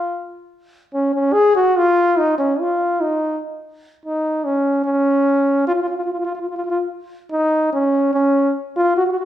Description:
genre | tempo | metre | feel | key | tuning
calypso | 146 BPM | 4/4 | straight | unclear | A4 = 440 Hz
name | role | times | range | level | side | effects
clear trombone | solo | 0.0-9.3 s | C#4 to G#4 | -16 LUFS | equal | none
room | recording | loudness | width
wet large studio reverb, RT60 1.2 s | band playing live in one room | -16 LUFS | side -11 dB against mid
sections
0.0-9.3 A section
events
none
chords
none

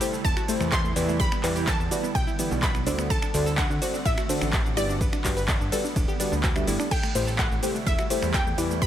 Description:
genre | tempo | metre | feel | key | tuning
progressive house | 126 BPM | 4/4 | straight | A dorian | A4 = 440 Hz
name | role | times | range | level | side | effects
wide unison pluck | melody | 0.0-8.9 s | D5 to C6 | -32 LUFS | right 1 dB | dub echo
evolving wavetable pad | sustained chords | 0.0-8.9 s | C3 to F#5 | -34 LUFS | right 4 dB | ensemble chorus, built-in reverb, sidechain pumping
analog pluck | arpeggios | 0.0-8.9 s | A3 to B4 | -33 LUFS | right 1 dB | chorus, sidechain pumping, dub echo
deep mellow chord stab | stabs | 0.0-8.9 s | D3 to E5 | -30 LUFS | left 2 dB | chorus, sidechain pumping
deep house drum kit | drums | 0.0-8.9 s | crash cymbal, finger snaps, handclaps, hi-hat, ride cymbal, shaker | -31 LUFS | right 1 dB | overdrive, sidechain pumping on perc, small room ambience, sidechain pumping on hats, sidechain pumping on cymbals
fat analog bass | bass | 0.2-8.9 s | D1 to E2 | -29 LUFS | equal | sidechain pumping
electronic kick drum | drums | 0.2-8.9 s | none | -27 LUFS | equal | overdrive, small room ambience
room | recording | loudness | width
little or no reverb | none | -22 LUFS | side -11 dB against mid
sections
0.0-6.9 A section; 6.9-8.9 A section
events
drop 0.0-6.9, 6.9-8.9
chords
0.0 Am7; 1.2 Em7; 3.1 D7; 5.0 Gmaj7; 6.9 Am7

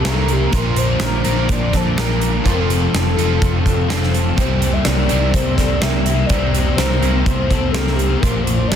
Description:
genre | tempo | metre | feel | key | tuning
rock, shoegaze and dream pop | 125 BPM | 4/4 | straight | C mixolydian | A4 = 440 Hz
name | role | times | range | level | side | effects
hollow clarinet-like synth lead | melody | 0.0-8.8 s | G4 to E5 | -24 LUFS | left 2 dB | chorus, analog delay
soft string machine | sustained chords | 0.0-8.8 s | A4 to E6 | -30 LUFS | equal | ensemble chorus
electric guitar through a small old amp | arpeggios | 0.0-8.8 s | A4 to C5 | -29 LUFS | right 1 dB | analog chorus, analog delay
overdriven electric guitar | riff | 0.0-8.8 s | Bb2 to Bb4 | -24 LUFS | right 13 dB | reverse reverb
thick fuzz guitar | riff | 0.0-8.8 s | F2 to C4 | -21 LUFS | left 9 dB | distortion, ensemble chorus
huge arena drum kit | drums | 0.0-8.8 s | hi-hat, kick drum, snare drum | -20 LUFS | equal | none
picked electric bass | bass | 0.1-8.8 s | F1 to C2 | -20 LUFS | equal | none
room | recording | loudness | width
light reverb | dense, heavily limited modern master | -14 LUFS | side -8 dB against mid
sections
0.0-8.8 A section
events
none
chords
0.0 C7; 0.5 Bbmaj7; 2.5 Fmaj7; 4.4 C7; 8.2 Bbmaj7

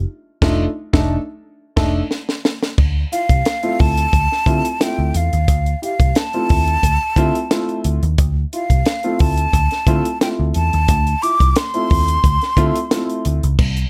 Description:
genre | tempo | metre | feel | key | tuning
funk | 89 BPM | 4/4 | straight | unclear | A4 = 437 Hz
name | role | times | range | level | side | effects
vintage muted picked electric bass | bass | 0.0-13.8 s | F1 to D3 | -20 LUFS | equal | none
dark upright piano | stabs | 0.4-13.4 s | A3 to A4 | -24 LUFS | equal | plate reverb
compact cocktail drum kit | drums | 0.4-13.9 s | crash cymbal, hi-hat, kick drum, snare drum | -20 LUFS | equal | none
breathy hollow jazz flute | melody | 3.1-13.3 s | F5 to D6 | -22 LUFS | equal | plate reverb
room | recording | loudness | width
little or no reverb | none | -17 LUFS | mono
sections
0.0-2.8 A section; 2.8-13.6 B section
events
band accent 0.1-2.8; drum fill 2.1-2.8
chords
0.0 F13; 2.8 Dm9

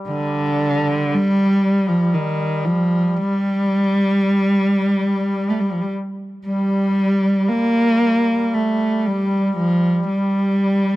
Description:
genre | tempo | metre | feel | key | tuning
caucasian folk, Caucasian lament | 57 BPM | 3/4 | rubato | G minor | A4 = 440 Hz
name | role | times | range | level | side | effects
mellow duduk | drone | 0.0-11.0 s | G3 | -28 LUFS | left 2 dB | none
dark cello | melody | 0.1-11.0 s | D3 to Bb3 | -16 LUFS | equal | none
room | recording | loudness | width
little or no reverb | dry, close 1970s-style studio recording | -16 LUFS | side -17 dB against mid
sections
0.0-6.4 A section; 6.4-11.0 B section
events
none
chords
none

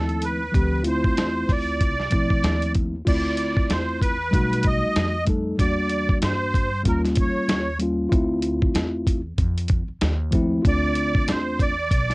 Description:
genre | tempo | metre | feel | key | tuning
hip hop, jazz-hop | 95 BPM | 4/4 | swing 58% on 16ths | unclear | A4 = 436 Hz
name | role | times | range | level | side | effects
musette accordion | melody | 0.0-12.1 s | A4 to D#5 | -25 LUFS | right 2 dB | cassette tape
mellow tine electric piano | accompaniment | 0.0-11.7 s | F3 to A4 | -24 LUFS | left 1 dB | cassette tape
upright bass | bass | 0.0-12.1 s | B1 to G2 | -28 LUFS | equal | none
dusty soul sampler-style drum kit | drums | 0.1-12.1 s | crash cymbal, hi-hat, kick drum, snare drum | -22 LUFS | equal | cassette tape
room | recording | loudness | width
little or no reverb | home recording on cassette | -20 LUFS | side -24 dB against mid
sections
0.0-3.1 A section; 3.1-12.1 B section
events
none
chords
0.0 Dm9; 4.3 B7b13; 5.6 Em7b5; 6.9 Eb9; 8.1 Dm9

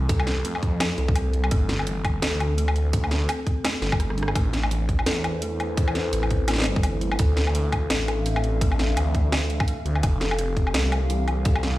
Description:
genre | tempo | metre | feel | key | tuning
half-time drum and bass | 169 BPM | 4/4 | swing 57% on 16ths, half-time | A minor | A4 = 440 Hz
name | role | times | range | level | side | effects
kalimba | arpeggios | 0.0-11.8 s | E3 to A4 | -31 LUFS | equal | dub echo
phased detuned saw bass | bass | 0.0-11.8 s | F1 to F2 | -24 LUFS | equal | phaser, tube saturation
drum and bass drum kit | drums | 0.1-11.7 s | hi-hat, rim click, snare drum, woodblock | -27 LUFS | left 1 dB | overdrive
electronic kick drum | drums | 0.1-11.5 s | none | -22 LUFS | equal | overdrive
dark analog pad | sustained chords | 5.2-11.8 s | A3 to F5 | -33 LUFS | left 2 dB | chorus, phaser, sidechain pumping
room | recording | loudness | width
little or no reverb | played on a big sound system in a bare room, large studio reverb | -21 LUFS | side -16 dB against mid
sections
0.0-11.8 A section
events
drum fill 4.0-4.4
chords
0.0 F; 1.5 G5; 4.4 Am7; 7.2 Dm; 10.0 Fadd9

